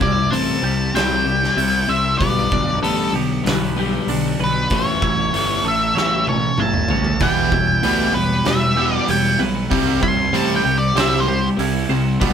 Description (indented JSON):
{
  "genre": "quiet-loud alternative rock",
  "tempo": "96 BPM",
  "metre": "4/4",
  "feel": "straight",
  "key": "unclear",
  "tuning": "A4 = 443 Hz",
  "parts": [
    { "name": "octave-fuzz lead guitar", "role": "melody", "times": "0.0-11.5 s", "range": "A4 to C6", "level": "-20 LUFS", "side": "left 1 dB", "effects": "distortion" },
    { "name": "twelve-string electric guitar", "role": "arpeggios", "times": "0.0-12.3 s", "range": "C3 to C#5", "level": "-26 LUFS", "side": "right 8 dB", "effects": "none" },
    { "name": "overdriven electric guitar", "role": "riff", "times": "0.0-12.3 s", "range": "E2 to C4", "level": "-23 LUFS", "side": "left 6 dB", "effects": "none" },
    { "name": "fuzz picked electric bass", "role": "bass", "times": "0.0-12.3 s", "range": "E1 to D2", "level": "-24 LUFS", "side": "equal", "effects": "overdrive" },
    { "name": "oversized low-tuned drum kit", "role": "drums", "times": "0.0-12.3 s", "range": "hi-hat, kick drum, snare drum, toms", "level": "-23 LUFS", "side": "right 1 dB", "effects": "none" },
    { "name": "distorted electric guitar", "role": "riff", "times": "7.2-12.3 s", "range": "B2 to C4", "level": "-22 LUFS", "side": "right 6 dB", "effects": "overdrive" }
  ],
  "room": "light reverb",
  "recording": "band playing live in one room",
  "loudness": "-16 LUFS",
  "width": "side -8 dB against mid",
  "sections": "0.0-12.3 A section",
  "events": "lead electric guitar solo 0.0-12.3; drum fill 6.0-7.2",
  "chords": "0.0 C; 2.2 G; 4.7 A; 7.2 Em; 9.7 C"
}